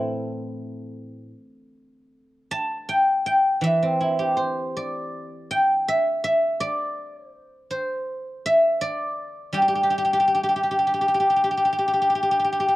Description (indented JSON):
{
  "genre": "chinese traditional, Chinese solo plucked strings",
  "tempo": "80 BPM",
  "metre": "4/4",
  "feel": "rubato",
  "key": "G zhi mode",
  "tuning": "A4 = 440 Hz",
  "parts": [
    { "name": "guzheng", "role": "solo", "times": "0.0-12.8 s", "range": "A2 to A5", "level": "-20 LUFS", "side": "equal", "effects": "cassette tape" }
  ],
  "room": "light reverb, small room ambience",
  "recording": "home recording on cassette",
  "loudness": "-20 LUFS",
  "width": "side -17 dB against mid",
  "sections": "0.0-12.8 A section",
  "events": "none",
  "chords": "none",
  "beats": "0.54 1.31 | 2.09 2.86 3.63 4.38 | 5.13 5.87 6.61 7.34 | 8.07 8.81 9.54 10.27 | 11.01 11.75 12.51"
}